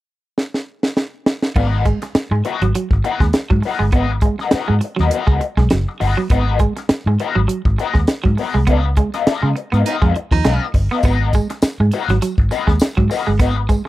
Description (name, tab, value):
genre	funk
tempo	101 BPM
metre	4/4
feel	swing 56% on 16ths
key	G# dorian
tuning	A4 = 440 Hz
part	tight funk drum kit	drums	0.4-13.9 s	crash cymbal, hi-hat, kick drum, snare drum	-17 LUFS	equal	none
part	electric guitar at the edge of break-up	accompaniment	1.6-13.7 s	B3 to D#5	-22 LUFS	left 7 dB	wah, lush chorus
part	electric guitar at the edge of break-up	riff	1.6-13.9 s	E#3 to B3	-22 LUFS	right 4 dB	none
part	vintage muted fingered electric bass	bass	1.6-13.7 s	F#1 to C#3	-17 LUFS	equal	none
part	bright baritone saxophone	second line	9.9-10.7 s	D#4	-23 LUFS	right 7 dB	none
part	tambourine	percussion	11.0-13.8 s	none	-37 LUFS	left 3 dB	none
room	studio ambience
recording	dry, close 1970s-style studio recording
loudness	-15 LUFS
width	side -16 dB against mid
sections	0.0-1.6 A section; 1.6-13.9 B section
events	drum fill 0.4-1.6; band accent 8.7-11.0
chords	0.0 N.C.; 1.6 G#m9; 8.7 C#13; 11.0 G#m9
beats	0.37 0.96 | 1.56 2.15 2.75 3.34 | 3.93 4.52 5.12 5.71 | 6.30 6.89 7.48 8.08 | 8.67 9.26 9.85 10.44 | 11.03 11.62 12.22 12.81 | 13.40